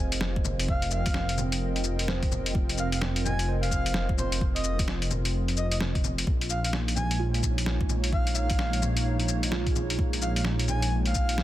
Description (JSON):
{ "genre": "future garage", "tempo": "129 BPM", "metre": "4/4", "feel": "swing 62% on 16ths", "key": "F minor", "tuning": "A4 = 440 Hz", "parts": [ { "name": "muted felt-like synth keys", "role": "accompaniment", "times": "0.0-11.4 s", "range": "F4 to Eb5", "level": "-40 LUFS", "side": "right 8 dB", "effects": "chorus, sidechain pumping, tape echo" }, { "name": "dark analog pad", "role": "sustained chords", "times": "0.0-11.4 s", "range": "Ab3 to G5", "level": "-34 LUFS", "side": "right 1 dB", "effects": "chorus, sidechain pumping" }, { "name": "dark detuned saw bass", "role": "bass", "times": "0.0-11.4 s", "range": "F1 to Bb1", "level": "-28 LUFS", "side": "equal", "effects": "sidechain pumping" }, { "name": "sub drop", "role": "sound effects", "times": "0.0-0.7 s", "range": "none", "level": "barely audible", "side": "none", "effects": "none" }, { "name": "lo-fi sampler-style drum kit", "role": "drums", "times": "0.1-11.4 s", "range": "bongos, cabasa, hi-hat, snare drum", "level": "-31 LUFS", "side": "left 2 dB", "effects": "overdrive" }, { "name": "electronic kick drum", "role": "drums", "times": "0.4-11.3 s", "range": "none", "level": "-28 LUFS", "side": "equal", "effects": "overdrive" }, { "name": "breathy flute-like synth lead", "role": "melody", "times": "0.7-11.4 s", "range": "C5 to Ab5", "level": "-35 LUFS", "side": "equal", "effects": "chorus, tremolo, tape echo" } ], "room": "digital ambience", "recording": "dense, heavily limited modern master", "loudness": "-24 LUFS", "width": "side -14 dB against mid", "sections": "0.0-11.4 A section", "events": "impact 0.0-0.7", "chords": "0.0 Fm11; 6.3 Bbm7", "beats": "0.22 | 0.69 1.15 1.62 2.08 | 2.55 3.01 3.48 3.94 | 4.41 4.87 5.34 5.80 | 6.27 6.73 7.20 7.66 | 8.13 8.59 9.06 9.52 | 9.99 10.45 10.92 11.38" }